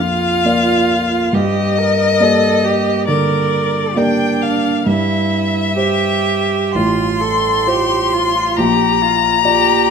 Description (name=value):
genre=classical, slow romantic movement for piano trio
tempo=58-72 BPM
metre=4/4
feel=rubato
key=Bb major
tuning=A4 = 440 Hz
part: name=rich violin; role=melody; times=0.0-9.9 s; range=D5 to C6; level=-16 LUFS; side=left 6 dB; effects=none
part: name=rich cello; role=second line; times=0.0-9.9 s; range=D4 to Bb4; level=-19 LUFS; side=right 9 dB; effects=none
part: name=dark grand piano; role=accompaniment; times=0.0-9.9 s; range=A1 to D5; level=-17 LUFS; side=equal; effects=none
room=light reverb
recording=close, detailed microphones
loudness=-13 LUFS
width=side -6 dB against mid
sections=0.0-9.9 A section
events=none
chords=0.0 Bb; 1.3 Gm; 4.9 C/G; 6.8 F/A; 8.6 Bb